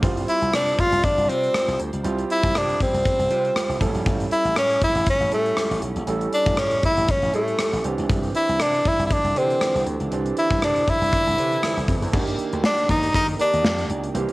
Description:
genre	1980s-style pop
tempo	119 BPM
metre	4/4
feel	swing 55% on 16ths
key	unclear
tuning	A4 = 441 Hz
part	warm concert grand piano	accompaniment	0.0-14.3 s	D3 to C5	-28 LUFS	right 4 dB	none
part	slap bass	bass	0.0-14.2 s	A1 to Eb3	-28 LUFS	equal	none
part	gated 80s drum kit	drums	0.0-14.3 s	crash cymbal, hi-hat, kick drum, rim click, snare drum	-24 LUFS	equal	cassette tape
part	edgy tenor saxophone	melody	0.3-13.9 s	A3 to F4	-21 LUFS	equal	cassette tape, analog delay
room	moderate spring reverb, RT60 2.1 s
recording	home recording on cassette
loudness	-19 LUFS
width	side -20 dB against mid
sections	0.0-12.1 A section; 12.1-14.3 B section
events	none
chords	0.0 Csus4; 3.8 A7; 7.8 Cadd9; 12.1 Ebmaj7

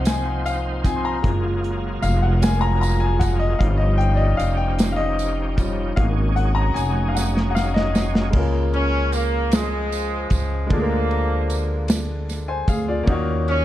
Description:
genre	slow gospel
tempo	51 BPM (dotted quarters)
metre	6/8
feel	straight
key	Db major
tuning	A4 = 440 Hz
part	clear grand piano	accompaniment	0.0-13.6 s	Db3 to C6	-25 LUFS	left 3 dB	none
part	bright tonewheel organ	sustained chords	0.0-8.3 s	F3 to C5	-30 LUFS	right 3 dB	slow rotary speaker, overdrive, chorus vibrato
part	mellow French horn section	sustained chords	0.0-8.3 s	F3 to F4	-32 LUFS	right 1 dB	none
part	upright bass	bass	0.0-13.6 s	F1 to Eb2	-22 LUFS	equal	none
part	modern studio drum kit	drums	0.1-13.6 s	crash cymbal, hi-hat, kick drum, ride cymbal, snare drum	-22 LUFS	equal	none
part	tambourine	percussion	0.1-13.0 s	none	-36 LUFS	right 9 dB	none
part	warm horn section	melody	8.7-13.6 s	F3 to Db4	-24 LUFS	right 1 dB	none
room	light reverb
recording	dark, warm production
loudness	-18 LUFS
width	side -13 dB against mid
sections	0.0-8.3 A section; 8.3-13.6 B section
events	grand piano solo 0.0-8.3; drum fill 7.2-8.3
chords	0.0 Dbmaj9; 1.2 Gbmaj9; 3.6 Eb9; 6.0 Ab7sus4; 8.3 Db6; 10.7 Bb7/D; 13.1 Ebm7

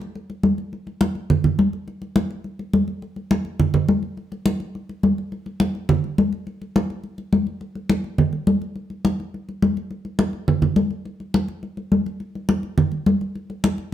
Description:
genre	latin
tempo	209 BPM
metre	4/4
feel	straight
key	none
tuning	none
part	congas	percussion	0.0-13.9 s	none	-20 LUFS	equal	none
room	wet studio reverb, RT60 0.8 s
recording	none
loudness	-20 LUFS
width	side -11 dB against mid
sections	0.7-9.9 A section; 9.9-13.9 B section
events	none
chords	none

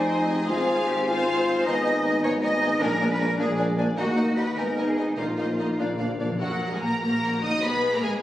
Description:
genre	classical, dramatic, fast romantic movement for symphony orchestra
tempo	96-106 BPM (dotted quarters)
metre	6/8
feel	straight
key	Eb minor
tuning	A4 = 438 Hz
part	rich studio violin section	melody	0.0-8.1 s	F5 to Eb6	-33 LUFS	equal	none
part	bright clarinet	second line	0.0-6.3 s	D4 to F4	-32 LUFS	left 1 dB	none
part	silver concert flute	second line	0.0-6.3 s	F5 to Ab5	-36 LUFS	left 2 dB	none
part	warm symphonic violin section	second line	0.0-8.1 s	Gb4 to F5	-32 LUFS	left 2 dB	none
part	dark bassoon	accompaniment	0.0-6.3 s	Bb3 to C4	-31 LUFS	equal	none
part	rich symphonic viola section	accompaniment	0.0-8.2 s	Gb3 to Eb4	-32 LUFS	equal	none
part	dark French horn section	sustained chords	0.0-6.2 s	Ab3 to F4	-30 LUFS	left 2 dB	none
part	mellow tuba	bass	0.0-6.3 s	F1 to Eb2	-30 LUFS	right 1 dB	none
part	rich symphonic cello section	bass	0.0-8.2 s	Eb4 to Eb5	-28 LUFS	equal	none
part	rich symphonic double bass section	bass	0.0-8.2 s	F1 to Eb2	-35 LUFS	right 1 dB	none
part	timpani	percussion	2.8-6.4 s	Bb2	-36 LUFS	equal	none
room	wet scoring stage reverb, RT60 1.6 s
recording	recorded on a phone in the room, studio reverb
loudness	-22 LUFS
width	side -13 dB against mid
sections	0.0-6.4 A section; 6.4-8.2 B section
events	timpani fill 5.8-6.4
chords	0.0 Fm7; 0.5 Fm/Ab; 1.7 Abm; 2.8 Bb7; 4.0 Ebm; 4.6 Abm; 5.2 Bbsus4; 5.8 Bb; 6.4 Ebm/Gb; 7.6 Abmadd9

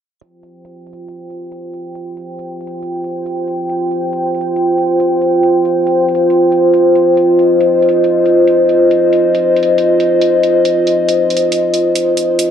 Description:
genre	deep dubstep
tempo	138 BPM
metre	4/4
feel	swing 59% on 16ths, half-time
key	unclear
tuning	A4 = 438 Hz
part	dark analog pad	sustained chords	0.2-12.5 s	F4 to G5	-11 LUFS	equal	chorus
part	electronic hi-hat	drums	0.2-12.5 s	none	-23 LUFS	right 3 dB	overdrive
room	moderate echo chamber reverb, RT60 1.3 s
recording	low-pass filter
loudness	-10 LUFS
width	side -8 dB against mid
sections	0.2-12.5 A section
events	filter sweep 0.2-12.5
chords	0.2 F5

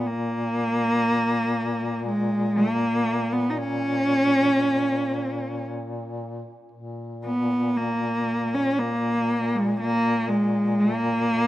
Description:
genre	caucasian folk, Caucasian lament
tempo	58 BPM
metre	3/4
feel	uneven beats, rubato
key	Bb phrygian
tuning	A4 = 440 Hz
part	warm cello	melody	0.0-11.5 s	Ab3 to Eb4	-22 LUFS	equal	none
part	mellow duduk	drone	0.0-11.5 s	Bb2	-31 LUFS	left 2 dB	stereo widening
room	light reverb, small room ambience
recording	rough home demo mix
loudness	-21 LUFS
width	side -15 dB against mid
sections	0.0-11.5 A section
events	none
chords	none

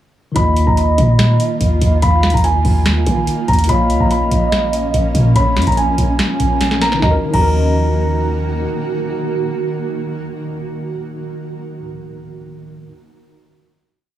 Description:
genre	hip hop, trap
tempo	144 BPM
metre	4/4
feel	half-time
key	Eb minor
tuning	A4 = 440 Hz
part	mellow tine electric piano	accompaniment	0.3-12.9 s	Eb3 to F5	-22 LUFS	left 1 dB	low-pass filter
part	felt-muted upright piano	melody	0.4-8.2 s	Ab5 to Cb6	-20 LUFS	equal	low-pass filter, digital delay
part	hollow clarinet-like synth lead	second line	0.4-8.2 s	Db5 to F5	-23 LUFS	right 3 dB	chorus, digital delay
part	granular cloud pad	sustained chords	1.0-11.1 s	Eb3 to Gb4	-24 LUFS	right 2 dB	built-in reverb
part	clean 808-style bass	bass	0.4-8.7 s	Bb1 to Eb3	-16 LUFS	equal	none
part	booming analog drum machine	drums	0.4-7.5 s	crash cymbal, hi-hat, kick drum, snare drum	-18 LUFS	equal	none
room	light reverb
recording	small room ambience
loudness	-13 LUFS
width	side -12 dB against mid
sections	0.4-7.0 hook; 7.0-10.4 final chord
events	drum fill 6.6-7.0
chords	0.4 Ebsus2; 3.7 Bbm; 7.0 Ebm

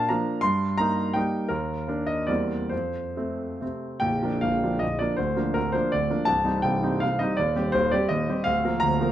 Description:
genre	classical, romantic triple-time dance for piano with dotted rhythms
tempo	130-178 BPM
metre	3/4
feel	rubato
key	Bb major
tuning	A4 = 440 Hz
part	warm concert grand piano	solo	0.0-9.1 s	Bb0 to C6	-23 LUFS	equal	none
room	light reverb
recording	none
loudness	-23 LUFS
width	side -12 dB against mid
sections	0.0-4.0 A section; 4.0-9.1 B section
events	none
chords	0.4 Eb/G; 1.5 Eb5; 2.3 C7/E; 2.7 F; 4.0 Bb; 5.2 Bb/D; 6.3 Cm; 7.4 Cm/Eb; 8.5 Bb/D

